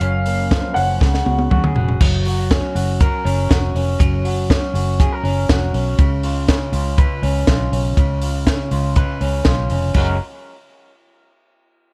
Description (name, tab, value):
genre	jangly indie pop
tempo	121 BPM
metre	4/4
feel	straight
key	F# major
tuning	A4 = 439 Hz
part	dark upright piano	melody	0.0-1.7 s	E#5 to F#5	-25 LUFS	equal	analog delay
part	electric guitar through a small old amp	arpeggios	0.0-10.2 s	F#2 to B4	-25 LUFS	equal	none
part	vintage muted fingered electric bass	bass	0.0-10.2 s	E#1 to D#2	-22 LUFS	equal	none
part	compact cocktail drum kit	drums	0.0-10.1 s	crash cymbal, hi-hat, kick drum, ride cymbal, snare drum, toms	-20 LUFS	equal	none
room	little or no reverb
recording	none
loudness	-18 LUFS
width	mono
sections	0.0-2.0 A section; 2.0-10.0 B section; 10.0-11.9 C section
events	drum fill 1.0-2.0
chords	0.0 F#maj7; 1.0 C#sus4; 2.0 F#; 6.0 C#7; 10.0 F#add9